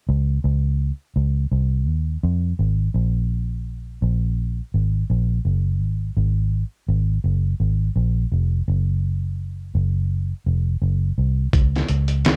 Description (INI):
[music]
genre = indie pop, bedroom pop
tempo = 84 BPM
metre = 4/4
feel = swing 60% on 16ths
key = Db major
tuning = A4 = 441 Hz
[part]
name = vintage muted fingered electric bass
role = bass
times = 0.1-12.3 s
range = F1 to F2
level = -22 LUFS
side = equal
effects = none
[part]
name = dusty soul sampler-style drum kit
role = drums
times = 11.5-12.4 s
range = hi-hat, kick drum, snare drum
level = -20 LUFS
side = equal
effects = vintage 12-bit sampler grit
[sound]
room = little or no reverb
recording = dark, warm production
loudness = -22 LUFS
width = mono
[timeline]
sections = 0.1-11.5 A section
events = none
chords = none